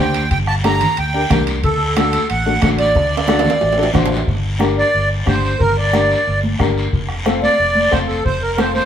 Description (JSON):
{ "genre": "latin, cumbia", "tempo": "181 BPM", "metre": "4/4", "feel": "straight", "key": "G minor from 4.3 s", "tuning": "A4 = 440 Hz", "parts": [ { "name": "accordion", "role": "melody", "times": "0.0-8.9 s", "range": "A4 to Bb5", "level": "-17 LUFS", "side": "right 2 dB", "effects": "light tremolo tuning" }, { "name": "clear upright piano", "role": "accompaniment", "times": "0.0-8.8 s", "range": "C4 to C5", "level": "-22 LUFS", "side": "left 4 dB", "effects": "none" }, { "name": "fingered electric bass", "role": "bass", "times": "0.0-8.8 s", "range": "F1 to D2", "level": "-21 LUFS", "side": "equal", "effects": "none" }, { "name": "guiro", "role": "percussion", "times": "0.1-8.9 s", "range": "none", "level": "-27 LUFS", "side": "left 2 dB", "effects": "none" }, { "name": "timbales", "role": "percussion", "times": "0.1-4.2 s", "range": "none", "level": "-25 LUFS", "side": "right 4 dB", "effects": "none" }, { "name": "bombo", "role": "percussion", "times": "0.3-8.8 s", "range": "none", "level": "-22 LUFS", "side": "left 1 dB", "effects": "none" }, { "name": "congas", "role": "percussion", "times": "0.3-8.9 s", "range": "none", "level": "-22 LUFS", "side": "right 1 dB", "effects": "none" } ], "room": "moderate stone room reverb, RT60 1.2 s", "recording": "band playing live in one room", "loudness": "-14 LUFS", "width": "side -9 dB against mid", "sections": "0.0-4.3 A section; 4.3-8.9 B section", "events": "drum fill 3.0-4.3", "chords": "0.0 Gm; 1.6 D; 4.3 Gm; 6.9 F" }